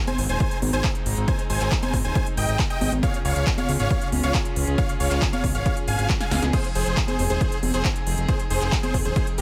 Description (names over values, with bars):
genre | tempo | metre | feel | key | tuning
uplifting trance | 137 BPM | 4/4 | straight | unclear | A4 = 443 Hz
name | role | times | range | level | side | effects
clear studio string section | sustained chords | 0.0-9.4 s | Db3 to Ab4 | -34 LUFS | equal | sidechain pumping
dense compressed supersaw | melody | 0.1-9.4 s | G4 to Ab5 | -30 LUFS | equal | sidechain pumping, dub echo
big-room dance drum kit | drums | 0.1-9.4 s | congas, crash cymbal, handclaps, hi-hat, snare drum | -31 LUFS | equal | overdrive
fat analog bass | bass | 0.2-9.4 s | Eb1 to Db2 | -27 LUFS | equal | sidechain pumping
electronic kick drum | drums | 0.4-9.2 s | none | -27 LUFS | equal | overdrive
room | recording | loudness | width
little or no reverb | none | -23 LUFS | mono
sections
0.0-9.4 A section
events
drum fill 6.1-6.5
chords
0.0 Ab; 3.0 Db; 6.5 Fm7